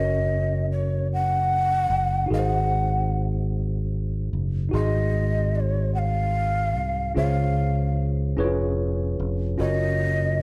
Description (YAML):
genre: slow gospel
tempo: 49 BPM (dotted quarters)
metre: 6/8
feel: straight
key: unclear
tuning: A4 = 440 Hz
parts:
  - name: breathy mellow shakuhachi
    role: melody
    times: 0.0-10.4 s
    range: Db5 to Gb5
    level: -28 LUFS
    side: equal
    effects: none
  - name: tine electric piano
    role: accompaniment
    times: 0.0-10.4 s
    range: Ab2 to C6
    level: -31 LUFS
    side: equal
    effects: overdrive
  - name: fingered electric bass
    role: bass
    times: 0.0-10.4 s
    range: F1 to Db2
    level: -27 LUFS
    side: equal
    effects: none
room: moderate recital hall reverb, RT60 1.4 s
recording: none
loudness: -24 LUFS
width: mono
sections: 0.0-10.4 A section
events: none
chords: 0.0 Gb; 2.3 Ab7; 7.2 Dbmaj7; 8.4 Db7/F; 9.6 Gbmaj7